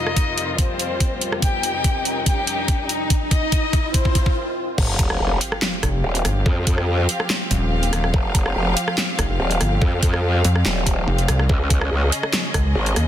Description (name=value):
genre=heavy wobble dubstep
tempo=143 BPM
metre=4/4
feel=half-time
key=F minor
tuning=A4 = 443 Hz
part: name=dark studio violin section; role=melody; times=0.0-4.4 s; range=C4 to G5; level=-25 LUFS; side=left 3 dB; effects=ping-pong delay
part: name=rich studio string section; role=sustained chords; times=0.0-13.1 s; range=F2 to F5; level=-27 LUFS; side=left 1 dB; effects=sidechain pumping
part: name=riser and sub drop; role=sound effects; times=0.6-6.5 s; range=none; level=-30 LUFS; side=equal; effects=none
part: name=granular cloud pad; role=texture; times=0.0-4.4 s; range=F4 to G5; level=-33 LUFS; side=left 2 dB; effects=built-in reverb, sidechain pumping
part: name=dubstep drum kit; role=drums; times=0.1-13.1 s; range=crash cymbal, handclaps, hi-hat, rim click, snare drum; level=-24 LUFS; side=right 1 dB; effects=soft clipping on snare
part: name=electronic kick drum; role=drums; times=0.2-12.6 s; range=none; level=-20 LUFS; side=equal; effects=none
part: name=growl bass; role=bass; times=4.8-12.9 s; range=Eb1 to F2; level=-20 LUFS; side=equal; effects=chorus, overdrive
part: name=pulsing pluck wobble bass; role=bass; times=5.8-13.1 s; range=Eb1 to F2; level=-19 LUFS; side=equal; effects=chorus, overdrive
room=little or no reverb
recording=dense, heavily limited modern master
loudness=-18 LUFS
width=side -11 dB against mid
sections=0.0-4.8 A section; 4.8-13.1 B section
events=build-up 0.0-4.8; riser 0.6-4.4; drum fill 1.4-4.4; stop 4.4-4.8; drop 4.8-13.1; impact 4.8-6.5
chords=0.0 Fsus2; 11.5 Dbsus2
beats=0.17 0.58 1.00 | 1.42 1.84 2.26 2.68 | 3.10 3.52 3.94 4.36 | 4.78 5.20 5.62 6.04 | 6.46 6.88 7.30 7.72 | 8.14 8.56 8.98 9.40 | 9.82 10.24 10.65 11.07 | 11.49 11.91 12.33 12.75